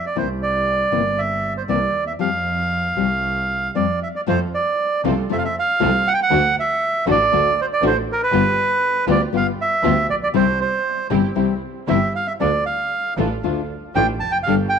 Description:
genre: tango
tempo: 118 BPM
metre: 4/4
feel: rubato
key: F major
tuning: A4 = 440 Hz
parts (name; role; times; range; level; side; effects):
- bandoneon; melody; 0.0-14.8 s; Bb4 to A5; -19 LUFS; right 3 dB; none
- nylon-string guitar; accompaniment; 0.2-14.6 s; C3 to G4; -23 LUFS; left 14 dB; none
- clear double bass; bass; 0.2-14.7 s; F1 to F2; -25 LUFS; right 2 dB; none
- muted symphonic string section; stabs; 4.3-14.7 s; B3 to A4; -28 LUFS; right 12 dB; none
room: light reverb, small room ambience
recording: 1960s-style stereo with parts hard left and right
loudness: -17 LUFS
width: side -7 dB against mid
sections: 0.0-4.3 A section; 4.3-14.8 B section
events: none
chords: 0.2 C7; 2.2 Fsus2; 4.3 F; 6.3 D; 8.3 G7; 10.3 C; 12.4 Dm

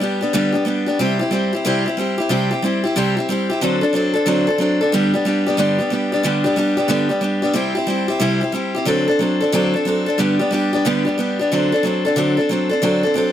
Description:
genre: rock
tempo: 182 BPM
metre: 4/4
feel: swing 64% on 8ths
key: G major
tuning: A4 = 441 Hz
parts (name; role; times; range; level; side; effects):
- picked steel-string acoustic guitar; solo; 0.0-13.3 s; G2 to A4; -16 LUFS; equal; none
room: light reverb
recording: none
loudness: -16 LUFS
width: side -10 dB against mid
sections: 0.0-4.9 A section; 4.9-13.3 B section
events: none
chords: 0.0 G; 1.0 C; 3.6 D7; 4.9 G; 7.6 C; 8.9 D7; 10.2 G; 11.5 D7

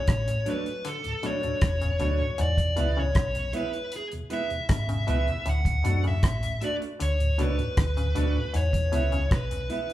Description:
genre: roots reggae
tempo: 78 BPM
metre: 4/4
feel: straight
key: unclear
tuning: A4 = 441 Hz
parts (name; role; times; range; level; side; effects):
- smooth overdriven lead guitar; melody; 0.0-9.9 s; G#4 to F#5; -30 LUFS; left 2 dB; none
- muted clav; arpeggios; 0.0-9.3 s; G#2 to D3; -38 LUFS; left 3 dB; overdrive, tape echo
- hollow-body short-scale fingered electric bass; bass; 0.0-9.7 s; E1 to F#2; -26 LUFS; equal; none
- deep reggae drum kit; drums; 0.1-9.9 s; hi-hat, kick drum, rim click; -26 LUFS; equal; none
- mellow tonewheel organ; accompaniment; 0.3-9.8 s; D2 to F#4; -36 LUFS; left 1 dB; chorus vibrato, stopped rotary speaker
- mellow electric guitar; accompaniment; 0.5-9.9 s; D4 to E5; -35 LUFS; right 6 dB; none
room: moderate large studio reverb, RT60 1.3 s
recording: band playing live in one room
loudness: -24 LUFS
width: side -14 dB against mid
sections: 0.0-9.9 A section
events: none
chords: 0.0 D; 2.4 E; 5.5 D; 8.5 E

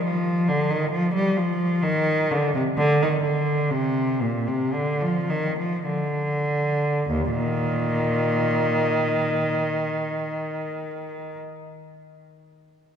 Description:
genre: classical, baroque-style suite movement for unaccompanied cello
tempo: 46-70 BPM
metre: 4/4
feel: rubato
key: unclear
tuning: A4 = 440 Hz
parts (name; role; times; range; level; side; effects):
- clear cello; solo; 0.0-11.4 s; Eb2 to G3; -21 LUFS; equal; none
room: wet church reverb, RT60 3.2 s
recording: dark, warm production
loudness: -21 LUFS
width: side -8 dB against mid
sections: 0.0-7.1 A section; 7.1-11.7 B section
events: slowing down 0.0-7.1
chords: none

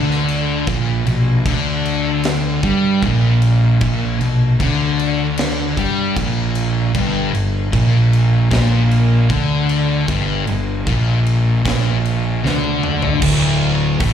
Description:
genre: stoner and doom metal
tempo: 77 BPM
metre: 4/4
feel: straight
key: unclear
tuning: A4 = 439 Hz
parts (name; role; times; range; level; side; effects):
- thick fuzz guitar; riff; 0.0-14.1 s; D2 to G3; -19 LUFS; left 6 dB; distortion
- thick fuzz guitar; riff; 0.0-14.1 s; D2 to G3; -19 LUFS; right 5 dB; distortion
- fuzz fingered electric bass; bass; 0.0-14.1 s; D1 to G2; -21 LUFS; equal; overdrive
- big rock drum kit; drums; 0.1-14.1 s; crash cymbal, hi-hat, kick drum, snare drum, toms; -24 LUFS; equal; none
room: studio reverb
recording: live gig heard through the venue's PA, club reverb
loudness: -14 LUFS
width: side -8 dB against mid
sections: 0.0-13.2 A section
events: drum fill 12.4-13.2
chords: 0.0 N.C.; 0.7 Bb6; 6.9 G5; 13.2 D5

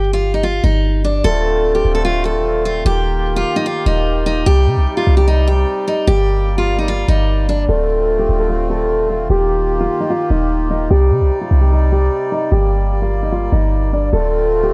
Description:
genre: hip hop, trap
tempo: 149 BPM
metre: 4/4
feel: half-time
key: D phrygian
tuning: A4 = 441 Hz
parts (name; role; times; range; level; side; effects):
- picked steel-string acoustic guitar; melody; 0.0-14.7 s; D4 to A4; -20 LUFS; equal; low-pass filter
- clean 808-style bass; bass; 0.0-14.7 s; D1 to C3; -18 LUFS; equal; none
- hand-pumped harmonium; sustained chords; 1.2-14.7 s; C3 to D5; -26 LUFS; equal; none
room: small room ambience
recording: dry, gritty hardware recording, cassette tape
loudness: -16 LUFS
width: mono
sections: 0.0-7.7 A section; 7.7-14.7 B section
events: none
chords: 0.0 Ebadd9/G; 1.2 Dm7; 2.9 Ebadd9; 4.5 Cmadd9; 6.1 Gm; 7.7 Dm7; 9.3 Ebadd9; 10.9 Cmadd9; 12.5 Gm; 14.1 Dm7

